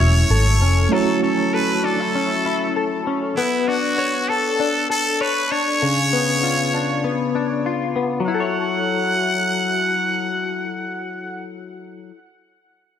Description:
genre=indie pop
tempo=98 BPM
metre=4/4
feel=swing 55% on 16ths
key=F# minor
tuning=A4 = 440 Hz
part: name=trumpet with straight mute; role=melody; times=0.0-11.5 s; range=E4 to F#5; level=-22 LUFS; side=right 1 dB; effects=lush chorus, ping-pong delay
part: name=direct-recorded clean electric guitar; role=accompaniment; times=0.0-12.3 s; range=C#3 to C#5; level=-22 LUFS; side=left 5 dB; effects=ensemble chorus, warbly pitch drift
part: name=mellow reed electric piano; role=accompaniment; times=0.0-3.4 s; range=A3 to C#5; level=-24 LUFS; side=right 8 dB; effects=fast tremolo
part: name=vintage muted fingered electric bass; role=bass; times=0.0-0.9 s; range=E1 to G#1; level=-15 LUFS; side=equal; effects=none
room=moderate spring reverb, RT60 2.2 s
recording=dark, warm production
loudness=-18 LUFS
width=side -9 dB against mid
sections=0.0-8.3 A section; 8.3-10.7 B section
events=none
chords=0.0 F#m7; 3.4 Bm9; 5.8 C#7b9; 8.3 F#m7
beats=0.31 | 0.93 1.54 2.15 2.76 | 3.37 3.98 4.59 5.21 | 5.82 6.43 7.04 7.65 | 8.26 8.87 9.48 10.09

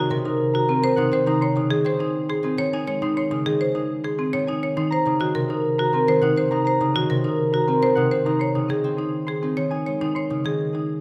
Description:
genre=classical, minimalist pattern music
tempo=103 BPM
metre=3/4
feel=straight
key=Ab mixolydian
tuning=A4 = 440 Hz
part: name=concert harp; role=melody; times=0.0-11.0 s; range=Ab4 to C6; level=-27 LUFS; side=equal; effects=none
part: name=concert harp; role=accompaniment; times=0.0-11.0 s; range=C3 to Eb4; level=-28 LUFS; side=equal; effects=none
part: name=marimba with hard mallets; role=arpeggios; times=0.0-10.9 s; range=C4 to Db5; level=-25 LUFS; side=equal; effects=none
room=moderate recital hall reverb, RT60 1.6 s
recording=none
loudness=-22 LUFS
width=mono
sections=0.0-11.0 A section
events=none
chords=0.0 Ebm7; 1.4 Absus4; 4.9 Ebm7; 8.4 Absus4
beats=0.25 0.83 | 1.42 2.00 2.58 | 3.16 3.75 4.33 | 4.91 5.49 6.08 | 6.66 7.24 7.82 | 8.40 8.99 9.57 | 10.15 10.73

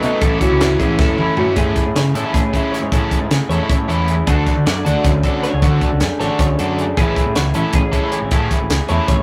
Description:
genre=math rock and midwest emo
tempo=311 BPM (eighths)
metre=7/8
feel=straight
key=A major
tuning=A4 = 440 Hz
part: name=electric guitar through a small old amp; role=accompaniment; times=0.0-9.2 s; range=F#2 to G#4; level=-24 LUFS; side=equal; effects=none
part: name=twelve-string electric guitar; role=arpeggios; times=0.0-9.2 s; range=F#4 to F#5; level=-26 LUFS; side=equal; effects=none
part: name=biting overdriven guitar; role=riff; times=0.0-9.1 s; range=A2 to A4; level=-25 LUFS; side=equal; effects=spring reverb
part: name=growling picked electric bass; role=bass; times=0.0-9.2 s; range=F#1 to D3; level=-22 LUFS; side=equal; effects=overdrive
part: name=crisp fusion drum kit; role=drums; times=0.0-9.2 s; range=hi-hat, kick drum, snare drum, toms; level=-21 LUFS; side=equal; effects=none
room=light reverb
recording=rough rehearsal-room recording, tube saturation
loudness=-17 LUFS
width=mono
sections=0.0-1.6 A section; 1.6-9.2 B section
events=drum fill 1.0-1.6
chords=0.2 A6; 1.6 Amaj7; 4.3 Dmaj7; 7.0 Amaj7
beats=0.02 | 0.22 0.41 0.60 0.80 0.99 1.18 1.38 | 1.57 1.76 1.96 2.15 2.34 2.54 2.73 | 2.92 3.12 3.31 3.50 3.70 3.89 4.08 | 4.28 4.47 4.66 4.86 5.05 5.24 5.43 | 5.63 5.82 6.01 6.20 6.40 6.59 6.78 | 6.97 7.17 7.36 7.55 7.74 7.94 8.13 | 8.32 8.51 8.70 8.90 9.09

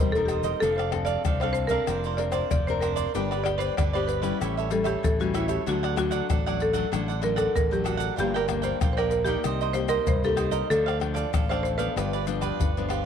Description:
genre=samba and choro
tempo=95 BPM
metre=4/4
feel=straight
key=G minor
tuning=A4 = 440 Hz
part: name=buzzing marimba with medium hard mallets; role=melody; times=0.0-12.9 s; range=E4 to D5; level=-28 LUFS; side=equal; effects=slapback echo
part: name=cavaquinho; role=accompaniment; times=0.0-13.0 s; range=D4 to G5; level=-31 LUFS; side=right 10 dB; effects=none
part: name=nylon-string guitar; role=accompaniment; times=0.0-13.1 s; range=G2 to Bb4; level=-32 LUFS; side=left 10 dB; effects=none
part: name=fingered electric bass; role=bass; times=0.0-13.1 s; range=E1 to D2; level=-30 LUFS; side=equal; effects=none
part: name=tube shaker, pandeiro, tamborim and surdo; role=percussion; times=0.2-13.1 s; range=none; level=-30 LUFS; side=left 2 dB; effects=none
room=moderate spring reverb, RT60 2.5 s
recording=1960s-style stereo with parts hard left and right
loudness=-23 LUFS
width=side -8 dB against mid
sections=0.0-13.1 A section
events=none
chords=0.0 Cm7; 0.6 F6; 1.9 Bbadd9/F; 3.1 G; 4.4 A7; 5.7 D; 8.2 Gm7; 9.4 Cm7; 10.7 Dm; 12.0 G7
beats=| 0.62 1.25 1.88 2.51 | 3.14 3.77 4.40 5.03 | 5.66 6.29 6.92 7.55 | 8.18 8.81 9.44 10.07 | 10.70 11.34 11.96 12.60

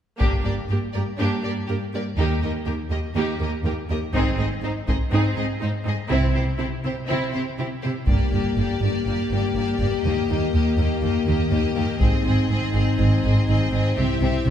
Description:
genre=cinematic, epic orchestral film score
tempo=122 BPM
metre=4/4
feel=straight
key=G phrygian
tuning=A4 = 440 Hz
part: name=rich symphonic violin section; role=second line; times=0.2-14.5 s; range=C4 to Eb5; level=-31 LUFS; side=left 3 dB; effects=none
part: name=clear symphonic viola section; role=accompaniment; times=0.2-14.5 s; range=Bb3 to G4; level=-28 LUFS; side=right 1 dB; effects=none
part: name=clear symphonic cello section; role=bass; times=0.2-14.5 s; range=Eb2 to C3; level=-25 LUFS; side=right 1 dB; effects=none
part: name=rich symphonic double bass section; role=bass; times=0.2-14.5 s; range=G1 to Eb2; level=-25 LUFS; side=right 2 dB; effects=none
part: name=taiko ensemble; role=drums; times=0.2-1.1, 4.1-5.1, 8.1-9.0, 12.0-12.9 s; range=none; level=-24 LUFS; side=equal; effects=none
part: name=warm symphonic violin section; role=melody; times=8.1-14.5 s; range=D5 to E5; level=-33 LUFS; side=left 4 dB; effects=none
part: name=mellow French horn section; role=sustained chords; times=8.1-14.5 s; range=Bb3 to G4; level=-26 LUFS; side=left 6 dB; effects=none
room=wet scoring stage reverb, RT60 1.9 s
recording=recorded in a church or concert hall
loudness=-20 LUFS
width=side -9 dB against mid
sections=0.2-8.1 A section; 8.1-14.5 B section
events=build-up 8.1-14.5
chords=0.2 Gm; 2.2 Eb; 4.1 Ab; 6.1 C; 8.1 Gm; 10.0 Eb; 12.0 Ab; 14.0 C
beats=| 0.20 0.69 1.19 1.68 | 2.17 2.66 3.15 3.65 | 4.14 4.63 5.12 5.61 | 6.11 6.60 7.09 7.58 | 8.07 8.56 9.06 9.55 | 10.04 10.53 11.02 11.52 | 12.01 12.50 12.99 13.48 | 13.97 14.47

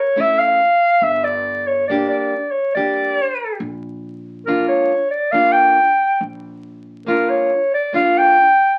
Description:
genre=klezmer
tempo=70 BPM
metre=3/4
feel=straight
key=unclear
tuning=A4 = 439 Hz
part: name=warm clarinet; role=melody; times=0.0-8.8 s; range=Bb4 to G5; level=-17 LUFS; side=equal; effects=none
part: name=nylon-string guitar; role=accompaniment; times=0.2-8.4 s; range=A3 to G4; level=-23 LUFS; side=equal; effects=none
part: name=upright bass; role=bass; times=1.0-7.2 s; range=G1 to Bb1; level=-34 LUFS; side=equal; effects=none
room=wet studio reverb, RT60 0.5 s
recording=very old 78 rpm record, vinyl crackle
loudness=-17 LUFS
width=mono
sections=0.0-8.8 A section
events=none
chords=0.0 A; 1.0 Gm; 3.6 Bb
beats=0.16 | 1.02 1.89 2.75 | 3.62 4.48 5.35 | 6.21 7.07 7.93

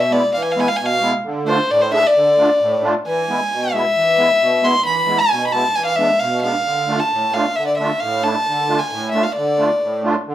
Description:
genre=klezmer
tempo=133 BPM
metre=2/4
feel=straight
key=D dorian sharp4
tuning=A4 = 440 Hz
part: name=warm violin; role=melody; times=0.0-10.0 s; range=C5 to C6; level=-16 LUFS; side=left 1 dB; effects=none
part: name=musette accordion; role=accompaniment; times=0.0-10.3 s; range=A2 to G#4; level=-21 LUFS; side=right 1 dB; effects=none
room=wet small room reverb, RT60 0.5 s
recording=heard from further back in the room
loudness=-15 LUFS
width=side -12 dB against mid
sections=0.0-3.1 A section; 3.1-10.3 B section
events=none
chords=0.0 E; 1.2 Dm; 3.1 E; 6.7 Dm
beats=| 0.35 0.80 | 1.25 1.70 | 2.15 2.60 | 3.05 3.50 | 3.96 4.41 | 4.86 5.31 | 5.76 6.21 | 6.66 7.11 | 7.56 8.01 | 8.46 8.92 | 9.37 9.82 | 10.27

